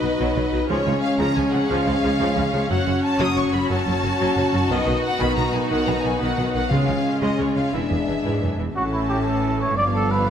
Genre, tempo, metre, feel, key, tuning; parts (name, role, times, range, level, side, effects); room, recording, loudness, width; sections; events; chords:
cinematic; 120 BPM (dotted quarters); 12/8; straight; Db mixolydian; A4 = 440 Hz
rich symphonic violin section; melody; 0.0-10.3 s; Cb5 to Eb6; -28 LUFS; left 2 dB
clear symphonic violin section; second line; 0.0-10.3 s; C#4 to Eb5; -29 LUFS; left 3 dB
clear symphonic viola section; accompaniment; 0.0-10.3 s; Eb3 to Gb4; -27 LUFS; right 1 dB
mellow French horn section; sustained chords; 0.0-10.3 s; E3 to Eb4; -24 LUFS; left 2 dB
clear symphonic cello section; bass; 0.0-10.3 s; E2 to Db3; -27 LUFS; right 2 dB
rich symphonic double bass section; bass; 0.0-10.3 s; E1 to Db2; -27 LUFS; right 2 dB
timpani; percussion; 6.7-7.2 s; Db3; -27 LUFS; equal
mellow trumpet; stabs; 8.8-10.3 s; E4 to D5; -22 LUFS; right 2 dB
wet scoring stage reverb, RT60 1.5 s; -19 LUFS; side -8 dB against mid
0.0-8.8 A section; 8.8-10.3 B section
0.0 Cb; 0.7 Db; 2.7 Gbm; 4.7 Cb; 6.7 Db; 7.7 E7; 8.8 A; 9.8 G7